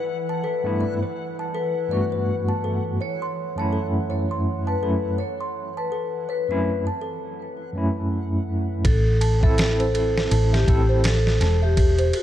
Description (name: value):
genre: trip hop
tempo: 82 BPM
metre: 4/4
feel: swing 59% on 16ths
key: unclear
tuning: A4 = 440 Hz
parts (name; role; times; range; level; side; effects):
- vibraphone with medium mallets; melody; 0.0-12.2 s; F#4 to C#5; -27 LUFS; left 3 dB; tape echo
- music box; arpeggios; 0.0-12.2 s; C4 to C6; -32 LUFS; right 3 dB; ping-pong delay
- backwards swelling texture; texture; 0.0-7.4 s; E3 to F#5; -35 LUFS; right 2 dB; built-in reverb
- overdriven tine electric piano; accompaniment; 0.6-11.0 s; F#2 to A4; -26 LUFS; equal; fast tremolo
- hollow-body short-scale fingered electric bass; bass; 8.8-12.1 s; E1 to A1; -20 LUFS; equal; none
- dusty soul sampler-style drum kit; drums; 8.8-12.2 s; kick drum, ride cymbal, snare drum; -23 LUFS; equal; none
room: digital ambience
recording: dark, warm production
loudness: -20 LUFS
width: side -12 dB against mid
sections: 0.0-8.8 A section; 8.8-12.2 B section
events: none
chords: 0.0 Gmaj7; 3.0 F#m7; 8.8 Am